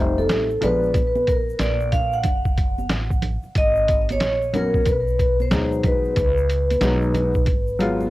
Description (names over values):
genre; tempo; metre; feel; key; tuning
hip hop, jazz-hop; 92 BPM; 4/4; swing 64% on 16ths; unclear; A4 = 439 Hz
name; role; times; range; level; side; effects
vibraphone with medium hard mallets; melody; 0.0-8.1 s; A4 to F#5; -22 LUFS; equal; cassette tape, tape echo
dark upright piano; accompaniment; 0.0-8.1 s; B2 to E#4; -23 LUFS; left 1 dB; none
upright bass; bass; 0.0-8.1 s; F1 to D2; -25 LUFS; equal; none
congas and egg shaker; percussion; 0.2-8.1 s; none; -33 LUFS; right 4 dB; none
lo-fi sampler-style drum kit; drums; 0.3-8.0 s; hi-hat, kick drum, snare drum; -22 LUFS; equal; cassette tape
room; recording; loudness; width
little or no reverb; home recording on cassette; -18 LUFS; side -17 dB against mid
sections
0.0-3.6 A section; 3.6-8.1 B section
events
none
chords
0.0 F9; 0.6 A#7b9; 2.3 F#m; 3.6 G#m9; 6.2 C#7sus4